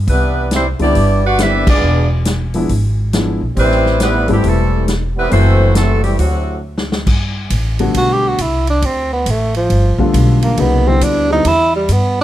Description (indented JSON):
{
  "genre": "jazz, big band swing",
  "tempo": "137 BPM",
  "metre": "4/4",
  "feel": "swing 65% on 8ths",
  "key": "E minor, G major from 7.1 s",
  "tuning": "A4 = 440 Hz",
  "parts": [
    { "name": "upright bass", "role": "bass", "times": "0.0-12.2 s", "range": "E1 to G2", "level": "-15 LUFS", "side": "equal", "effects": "none" },
    { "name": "warm saxophone section", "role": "melody", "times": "0.1-6.6 s", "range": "D3 to F#5", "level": "-17 LUFS", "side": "equal", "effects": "none" },
    { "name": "mellow trombone section", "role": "second line", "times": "0.1-6.6 s", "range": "A2 to F#4", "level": "-20 LUFS", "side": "right 2 dB", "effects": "none" },
    { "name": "swinging big-band drum kit", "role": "drums", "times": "0.1-12.0 s", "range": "crash cymbal, hi-hat, kick drum, ride cymbal, snare drum", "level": "-20 LUFS", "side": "equal", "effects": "none" },
    { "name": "warm grand piano", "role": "accompaniment", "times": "0.8-11.4 s", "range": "C#3 to B4", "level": "-18 LUFS", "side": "left 3 dB", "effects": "none" },
    { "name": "breathy tenor saxophone", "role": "melody", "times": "8.0-12.2 s", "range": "F3 to G4", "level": "-15 LUFS", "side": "right 2 dB", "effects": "none" }
  ],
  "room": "light reverb",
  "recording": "close, detailed microphones",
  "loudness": "-12 LUFS",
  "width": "side -13 dB against mid",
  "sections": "0.0-7.1 A section; 7.1-12.2 B section",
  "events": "band accent 1.6; drum fill 6.6-7.1; tenor saxophone solo 7.1-12.2",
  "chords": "0.1 Cmaj9; 1.8 E7b9; 3.6 Am9; 5.3 F#m7b5; 6.2 D7; 7.1 Gmaj7; 8.8 D5; 9.7 G7; 10.6 Cmaj9",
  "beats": "| 0.08 0.51 0.95 1.39 | 1.83 2.26 2.70 3.14 | 3.58 4.01 4.45 4.89 | 5.32 5.76 6.20 6.64 | 7.08 7.51 7.95 8.39 | 8.83 9.27 9.71 10.14 | 10.58 11.02 11.46 11.90"
}